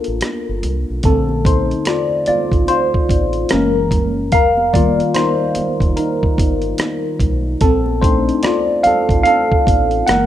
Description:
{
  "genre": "R&B, neo-soul",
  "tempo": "73 BPM",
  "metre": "4/4",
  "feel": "swing 63% on 16ths",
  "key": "unclear",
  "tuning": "A4 = 440 Hz",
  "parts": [
    { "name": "tine electric piano", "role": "accompaniment", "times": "0.0-10.3 s", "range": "D3 to F#5", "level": "-15 LUFS", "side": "left 1 dB", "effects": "phaser" },
    { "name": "dusty soul sampler-style drum kit", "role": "drums", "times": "0.0-10.3 s", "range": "hi-hat, kick drum, rim click", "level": "-17 LUFS", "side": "equal", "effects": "none" },
    { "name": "deep dub fingered electric bass", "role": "bass", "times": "0.1-10.3 s", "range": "F1 to C2", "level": "-22 LUFS", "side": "equal", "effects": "none" },
    { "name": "congas", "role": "percussion", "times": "0.2-10.3 s", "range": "none", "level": "-29 LUFS", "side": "right 6 dB", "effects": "none" }
  ],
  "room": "digital ambience",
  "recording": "rough home demo mix",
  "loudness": "-13 LUFS",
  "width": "side -11 dB against mid",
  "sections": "0.0-1.0 A section; 1.0-10.3 B section",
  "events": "tine electric piano solo 0.0-1.0, 1.0-10.3",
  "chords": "0.0 Gm9 (rootless); 1.0 Bbmaj9; 3.5 F#9; 4.3 F9sus4; 7.6 Bbmaj9",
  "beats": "0.21 | 1.03 1.86 2.68 3.50 | 4.32 5.14 5.96 6.79 | 7.61 8.43 9.25 10.07"
}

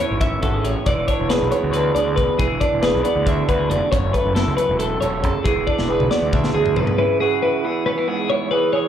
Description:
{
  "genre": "math rock and midwest emo",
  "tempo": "275 BPM (eighths)",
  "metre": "7/8",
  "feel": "straight",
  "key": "unclear",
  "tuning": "A4 = 440 Hz",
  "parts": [
    { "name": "electric guitar through a small old amp", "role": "accompaniment", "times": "0.0-8.9 s", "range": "F#2 to A4", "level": "-23 LUFS", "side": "right 7 dB", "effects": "slapback echo" },
    { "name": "twelve-string electric guitar", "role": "arpeggios", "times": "0.0-8.9 s", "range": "G#4 to E5", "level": "-21 LUFS", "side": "left 3 dB", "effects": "spring reverb, slapback echo" },
    { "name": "crisp fusion drum kit", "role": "drums", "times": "0.0-7.0 s", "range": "hi-hat, kick drum, snare drum, toms", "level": "-23 LUFS", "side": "left 1 dB", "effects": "none" },
    { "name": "fuzz picked electric bass", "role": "bass", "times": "0.1-6.9 s", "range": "E1 to D2", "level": "-23 LUFS", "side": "equal", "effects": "overdrive" }
  ],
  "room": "light reverb",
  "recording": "live gig heard through the venue's PA, club reverb, faint mains hum",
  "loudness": "-17 LUFS",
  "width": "side -9 dB against mid",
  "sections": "0.0-7.0 A section; 7.0-8.9 B section",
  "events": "drum fill 5.7-7.0",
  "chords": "0.0 Amaj7; 0.9 E7; 3.9 F#m7; 5.5 E7; 7.0 C#m7",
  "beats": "0.21 0.43 0.65 | 0.87 1.09 1.30 1.52 1.74 1.96 2.18 | 2.40 2.62 2.83 3.05 3.27 3.49 3.71 | 3.93 4.14 4.36 4.58 4.80 5.02 5.24 | 5.46 5.67 5.89 6.11 6.33 6.55 6.77 | 6.99 7.20 7.42 7.64 7.86 8.08 8.29 | 8.51 8.73"
}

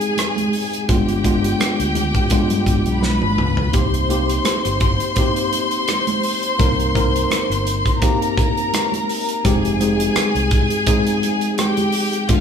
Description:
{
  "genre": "lush 1970s-style soul",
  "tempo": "84 BPM",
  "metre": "4/4",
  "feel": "swing 54% on 16ths",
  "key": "F minor",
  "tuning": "A4 = 438 Hz",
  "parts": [
    { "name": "warm studio string section", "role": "second line", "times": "0.0-12.4 s", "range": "F4 to C6", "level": "-22 LUFS", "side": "left 3 dB", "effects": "none" },
    { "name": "tine electric piano", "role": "accompaniment", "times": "0.0-12.4 s", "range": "Ab3 to Bb4", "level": "-21 LUFS", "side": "left 1 dB", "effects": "overdrive, fast stereo tremolo" },
    { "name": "modern studio drum kit", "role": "drums", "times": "0.0-12.4 s", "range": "hi-hat, kick drum, rim click, snare drum, toms", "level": "-21 LUFS", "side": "equal", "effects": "none" },
    { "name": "congas", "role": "percussion", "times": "0.2-12.4 s", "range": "none", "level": "-27 LUFS", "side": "right 6 dB", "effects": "none" },
    { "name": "fingered electric bass", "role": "bass", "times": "0.9-12.4 s", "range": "F1 to G2", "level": "-23 LUFS", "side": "equal", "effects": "none" }
  ],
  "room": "moderate studio reverb, RT60 0.9 s",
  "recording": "band playing live in one room",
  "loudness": "-16 LUFS",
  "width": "side -7 dB against mid",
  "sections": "0.0-12.4 A section",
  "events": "drum fill 3.0-3.7",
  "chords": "0.0 Fm9 (rootless); 0.9 G7b9; 3.7 Cm7; 9.4 Fm9",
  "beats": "0.18 | 0.89 1.60 2.32 3.03 | 3.75 4.46 5.17 5.88 | 6.60 7.31 8.02 8.73 | 9.45 10.16 10.87 11.58 | 12.30"
}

